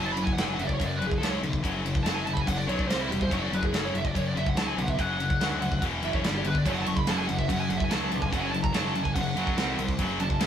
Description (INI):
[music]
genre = heavy metal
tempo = 143 BPM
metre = 4/4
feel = straight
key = F# minor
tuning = A4 = 439 Hz
[part]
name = bluesy overdriven lead guitar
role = melody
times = 0.0-10.5 s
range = E4 to C#6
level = -31 LUFS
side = right 2 dB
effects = distortion
[part]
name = scooped high-gain guitar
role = riff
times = 0.0-10.5 s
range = E2 to C4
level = -30 LUFS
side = left 3 dB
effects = distortion
[part]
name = fuzz picked electric bass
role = bass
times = 0.0-10.5 s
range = E1 to F#2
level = -32 LUFS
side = equal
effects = overdrive
[part]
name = modern studio drum kit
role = drums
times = 0.2-10.5 s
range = crash cymbal, kick drum, snare drum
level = -30 LUFS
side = equal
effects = none
[part]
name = sludgy distorted guitar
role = riff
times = 6.6-10.5 s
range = F#2 to C4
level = -34 LUFS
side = right 8 dB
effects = overdrive
[sound]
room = moderate studio reverb, RT60 0.6 s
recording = band playing live in one room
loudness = -25 LUFS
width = side -9 dB against mid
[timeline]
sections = 0.0-10.5 A section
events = lead electric guitar solo 0.0-10.5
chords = 0.0 F#5; 2.9 C5; 3.3 F#5; 5.8 E5; 6.2 G5; 6.7 F#5; 9.6 C5